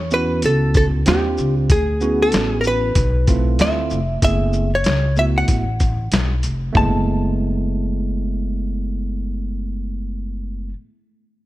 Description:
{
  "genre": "hip hop, jazz-hop",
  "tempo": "95 BPM",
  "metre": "4/4",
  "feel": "swing 60% on 16ths",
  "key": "F# minor",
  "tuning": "A4 = 440 Hz",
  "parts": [
    { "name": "hollow-body jazz guitar", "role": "melody", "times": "0.0-10.7 s", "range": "G4 to A5", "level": "-21 LUFS", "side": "equal", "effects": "none" },
    { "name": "upright bass", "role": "bass", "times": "0.0-10.7 s", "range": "F1 to E2", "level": "-21 LUFS", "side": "equal", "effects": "none" },
    { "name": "tine electric piano", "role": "accompaniment", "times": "0.1-10.7 s", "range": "G#3 to G#4", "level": "-24 LUFS", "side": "right 4 dB", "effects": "overdrive" },
    { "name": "trip hop sampler-style drum kit", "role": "drums", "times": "0.1-6.9 s", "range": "hi-hat, kick drum, shaker, snare drum, toms", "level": "-19 LUFS", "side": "equal", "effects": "none" }
  ],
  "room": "little or no reverb",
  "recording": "none",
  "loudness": "-16 LUFS",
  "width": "side -16 dB against mid",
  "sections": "0.0-6.7 A section; 6.7-9.3 B section",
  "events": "none",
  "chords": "0.0 A69; 1.1 D#maj13; 1.7 Dmaj13; 3.6 Dm7; 4.2 F#m11",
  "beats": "0.43 1.06 | 1.70 2.33 2.96 3.59 | 4.22 4.85 5.49 6.12 | 6.75 7.38 8.01 8.64"
}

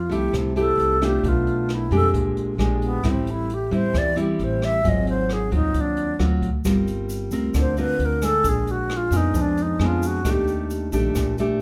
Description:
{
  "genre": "bossa nova",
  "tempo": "133 BPM",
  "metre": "4/4",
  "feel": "straight",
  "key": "unclear",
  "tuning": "A4 = 440 Hz",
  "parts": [
    { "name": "alto flute", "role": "melody", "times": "0.0-10.7 s", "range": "B3 to E5", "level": "-26 LUFS", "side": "equal", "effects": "none" },
    { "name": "nylon-string guitar", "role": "accompaniment", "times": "0.0-11.6 s", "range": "G#2 to Bb4", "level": "-26 LUFS", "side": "equal", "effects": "none" },
    { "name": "upright bass", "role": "bass", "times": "0.0-11.6 s", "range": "G1 to F2", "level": "-28 LUFS", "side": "equal", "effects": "none" },
    { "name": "jazz brush drum kit", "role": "drums", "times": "0.1-11.5 s", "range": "hi-hat, kick drum, rim click", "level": "-31 LUFS", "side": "equal", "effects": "none" },
    { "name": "tube shaker", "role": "percussion", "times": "6.6-11.6 s", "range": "none", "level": "-44 LUFS", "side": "equal", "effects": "none" }
  ],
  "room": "light reverb",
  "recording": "none",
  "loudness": "-22 LUFS",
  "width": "mono",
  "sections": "0.0-11.6 A section",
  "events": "alto flute solo 0.0-11.6",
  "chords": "0.0 Fmaj9; 1.2 Bm7b5; 2.1 Bb6; 3.0 Am7; 4.8 G#6; 6.6 Gm7; 8.4 Bb7b9; 10.3 Ebmaj7#11",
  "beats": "0.33 0.79 | 1.24 1.69 2.14 2.59 | 3.04 3.49 3.94 4.39 | 4.84 5.29 5.74 6.20 | 6.65 7.10 7.55 8.00 | 8.45 8.90 9.35 9.80 | 10.26 10.71 11.16 11.61"
}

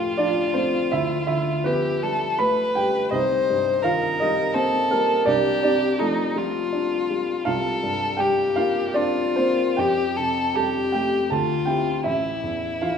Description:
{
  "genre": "classical, impressionist duo for violin and grand piano",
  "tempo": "71-85 BPM",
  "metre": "3/4",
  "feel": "rubato",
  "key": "unclear",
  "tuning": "A4 = 441 Hz",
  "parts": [
    { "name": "rich violin", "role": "melody", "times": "0.0-13.0 s", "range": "Eb4 to C5", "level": "-23 LUFS", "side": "left 3 dB", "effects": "none" },
    { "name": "warm baby grand piano", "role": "accompaniment", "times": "0.0-13.0 s", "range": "A1 to B5", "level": "-22 LUFS", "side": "right 2 dB", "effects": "none" }
  ],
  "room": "wet recital hall reverb, RT60 1.6 s",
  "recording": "minimal, uncompressed stereo recording",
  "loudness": "-20 LUFS",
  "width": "side -7 dB against mid",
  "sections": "0.0-13.0 A section",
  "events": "none",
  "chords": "0.0 Dm7; 0.9 G13/D; 3.1 Cm7; 5.3 F69/C; 7.5 C9sus4; 9.8 Fadd9; 11.3 Dm11; 12.1 A5",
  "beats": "0.18 | 0.92 1.65 2.39 | 3.11 3.84 4.55 | 5.27 5.99 6.73 | 7.46 8.19 8.95 | 9.78 10.55 11.31 | 12.06 12.82"
}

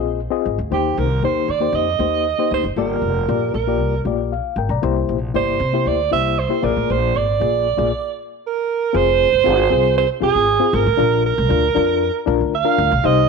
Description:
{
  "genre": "uptempo 1960s-style soul",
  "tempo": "117 BPM",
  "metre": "4/4",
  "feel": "straight",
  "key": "unclear",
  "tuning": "A4 = 439 Hz",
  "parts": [
    { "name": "reed electric piano", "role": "accompaniment", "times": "0.0-13.3 s", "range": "G2 to Bb5", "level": "-21 LUFS", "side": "left 14 dB", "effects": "overdrive, fast tremolo" },
    { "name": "upright bass", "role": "bass", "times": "0.0-13.3 s", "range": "F1 to C3", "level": "-22 LUFS", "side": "left 1 dB", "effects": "none" },
    { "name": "warm alto saxophone", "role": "melody", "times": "0.7-13.3 s", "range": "G4 to F5", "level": "-18 LUFS", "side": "right 11 dB", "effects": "slapback echo" }
  ],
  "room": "light reverb, studio reverb",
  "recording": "1960s-style stereo with parts hard left and right",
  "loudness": "-16 LUFS",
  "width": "side -4 dB against mid",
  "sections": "0.0-8.9 A section; 8.9-13.3 B section",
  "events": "stop 7.9-8.9",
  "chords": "0.0 Fm7; 0.7 Eb6; 2.8 Gm7; 4.8 C7; 6.6 Bb7; 8.9 Fm; 11.0 Bb",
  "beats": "0.20 | 0.71 1.23 1.75 2.26 | 2.78 3.29 3.81 4.32 | 4.84 5.35 5.87 6.38 | 6.89 7.41 7.92 8.43 | 8.94 9.46 9.97 10.48 | 10.99 11.50 12.02 12.53 | 13.04"
}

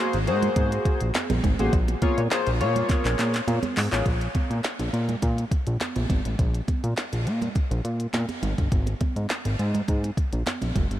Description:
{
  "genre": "early-eighties boogie funk",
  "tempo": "103 BPM",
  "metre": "4/4",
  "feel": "straight",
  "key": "unclear",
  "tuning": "A4 = 441 Hz",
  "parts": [
    { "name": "chorused polysynth", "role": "accompaniment", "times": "0.0-4.1 s", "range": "Bb3 to Db5", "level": "-27 LUFS", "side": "left 2 dB", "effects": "none" },
    { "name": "fat analog bass", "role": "bass", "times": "0.1-11.0 s", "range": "Gb1 to Bb2", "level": "-25 LUFS", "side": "equal", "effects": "none" },
    { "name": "glitchy drum kit", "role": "drums", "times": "0.1-11.0 s", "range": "handclaps, hi-hat, kick drum, snare drum", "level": "-26 LUFS", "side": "equal", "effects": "none" },
    { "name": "congas", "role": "percussion", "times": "0.4-10.9 s", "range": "none", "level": "-34 LUFS", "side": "right 5 dB", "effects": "none" }
  ],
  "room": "moderate huge ambient reverb, RT60 3.9 s",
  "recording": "dreamy mix soaked in reverb",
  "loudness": "-22 LUFS",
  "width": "side -13 dB against mid",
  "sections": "0.0-4.1 A section; 4.1-11.0 B section",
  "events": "drum fill 2.9-4.1",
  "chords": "0.0 Ab9; 1.7 Bbm7; 4.1 Absus2",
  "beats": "0.56 1.15 | 1.73 2.31 2.89 3.48 | 4.06 4.64 5.22 5.80 | 6.39 6.97 7.55 8.13 | 8.72 9.30 9.88 10.46"
}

